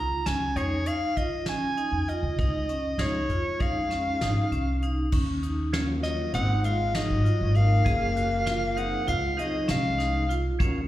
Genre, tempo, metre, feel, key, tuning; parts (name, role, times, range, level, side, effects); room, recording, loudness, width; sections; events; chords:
progressive instrumental, band music in an uneven meter; 197 BPM (eighths); 9/8; straight; Db major; A4 = 439 Hz
clear soprano saxophone; melody; 0.0-10.3 s; Db5 to Bb5; -29 LUFS; left 1 dB; slapback echo
vibraphone with hard mallets; arpeggios; 0.0-10.8 s; Db4 to Ab4; -31 LUFS; right 1 dB; slapback echo
upright bass; bass; 0.3-10.9 s; Gb1 to F2; -27 LUFS; equal
soft brush drum kit; drums; 0.3-10.7 s; crash cymbal, hi-hat, kick drum, snare drum; -30 LUFS; equal
percussive tonewheel organ; accompaniment; 0.6-10.8 s; F3 to Bb4; -36 LUFS; equal; chorus vibrato, slow rotary speaker, slapback echo
warm alto saxophone; second line; 6.1-10.3 s; Gb3 to C4; -34 LUFS; left 2 dB; slapback echo
light reverb; live gig heard through the venue's PA, recital hall reverb; -24 LUFS; side -14 dB against mid
0.0-5.1 A section; 5.1-10.9 B section
0.0 Dbadd9; 5.1 Ebm7; 6.3 Ab7; 7.9 Gbmaj7; 9.1 Dbmaj9